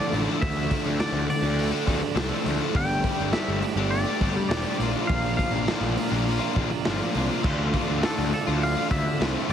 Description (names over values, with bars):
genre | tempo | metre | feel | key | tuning
quiet-loud alternative rock | 102 BPM | 4/4 | straight | D minor | A4 = 438 Hz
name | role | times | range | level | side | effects
twangy electric guitar | melody | 0.0-9.5 s | A4 to G5 | -32 LUFS | left 1 dB | digital delay
biting overdriven guitar | riff | 0.0-9.5 s | Bb2 to A4 | -29 LUFS | right 12 dB | none
cranked stack guitar | riff | 0.0-9.5 s | Bb2 to A4 | -29 LUFS | left 11 dB | overdrive, spring reverb
fuzz picked electric bass | bass | 0.1-9.5 s | E1 to D2 | -28 LUFS | equal | overdrive
raw garage drum kit | drums | 0.1-9.5 s | crash cymbal, hi-hat, kick drum, snare drum | -29 LUFS | equal | none
tonewheel organ | sustained chords | 7.4-9.5 s | F4 to D6 | -40 LUFS | equal | none
room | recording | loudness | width
small room ambience | heavily compressed radio sound | -22 LUFS | side -9 dB against mid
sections
0.0-9.5 A section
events
none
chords
0.0 Dm; 2.8 Gsus2; 4.8 Bb; 7.4 Dm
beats
| 0.42 1.00 1.59 2.17 | 2.76 3.35 3.93 4.52 | 5.10 5.69 6.27 6.86 | 7.45 8.03 8.62 9.21